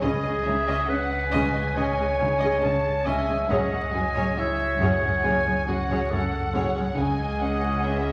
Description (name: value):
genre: cinematic, suspense film score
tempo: 69 BPM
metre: 4/4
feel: straight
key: C# minor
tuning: A4 = 441 Hz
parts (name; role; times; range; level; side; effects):
- muted symphonic violin section; melody; 0.0-8.1 s; G#4 to D#5; -36 LUFS; equal; none
- muted symphonic violin section; second line; 0.0-8.1 s; D#5 to A5; -34 LUFS; equal; none
- warm clarinet; second line; 0.0-8.1 s; F#4 to E5; -29 LUFS; equal; none
- muted symphonic viola section; accompaniment; 0.0-8.1 s; C#4 to G#4; -35 LUFS; equal; none
- muted symphonic cello section; riff; 0.0-8.1 s; F#2 to C#4; -33 LUFS; equal; none
- muted symphonic cello section; bass; 0.0-8.1 s; C#2 to F#2; -34 LUFS; equal; none
- muted symphonic double bass section; bass; 0.0-8.1 s; F#1 to C#2; -38 LUFS; equal; none
- pure sine sub bass; drone; 0.0-8.1 s; C#2; -34 LUFS; equal; none
- concert harp; texture; 0.0-7.0 s; E4 to D#6; -39 LUFS; equal; none
room: wet scoring stage reverb, RT60 1.9 s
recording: vinyl crackle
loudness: -24 LUFS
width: mono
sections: 0.0-8.1 A section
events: none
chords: 0.0 C#sus2; 3.5 F#sus2; 7.0 C#sus2